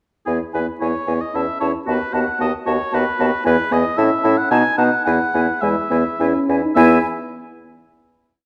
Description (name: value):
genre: quick classical-period movement for wind quintet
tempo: 104-115 BPM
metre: 3/4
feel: rubato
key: E major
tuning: A4 = 440 Hz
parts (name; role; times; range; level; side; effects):
- hollow concert flute; melody; 0.3-7.1 s; G#5 to A5; -28 LUFS; equal; none
- warm oboe; second line; 0.3-7.0 s; G#4 to G#5; -24 LUFS; equal; none
- dark French horn; accompaniment; 0.3-7.0 s; G#3 to D#4; -25 LUFS; equal; none
- warm clarinet; accompaniment; 0.3-7.0 s; D#4 to F#4; -26 LUFS; equal; none
- clear bassoon; bass; 0.3-7.0 s; D#2 to B2; -23 LUFS; equal; none
room: wet recital hall reverb, RT60 1.5 s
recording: none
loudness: -18 LUFS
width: mono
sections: 0.3-6.8 A section; 6.8-8.4 final chord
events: none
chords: 0.3 E; 1.3 A/E (rootless); 1.9 B/D#; 3.5 E5; 4.0 A; 4.5 B; 5.1 E5